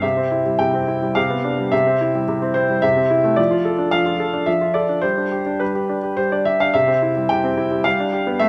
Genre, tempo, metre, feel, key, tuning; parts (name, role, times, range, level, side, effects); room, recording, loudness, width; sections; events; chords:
classical-period piano sonatina; 107 BPM; 3/4; straight; C major; A4 = 439 Hz
clear baby grand piano; solo; 0.0-8.5 s; C3 to G5; -19 LUFS; equal
wet recital hall reverb, RT60 1.9 s; -19 LUFS; mono
0.0-8.5 A section
0.0 C; 1.2 G7/C; 1.7 C; 2.8 Am/C; 3.4 Dm/F; 5.0 G; 6.7 C; 7.9 G7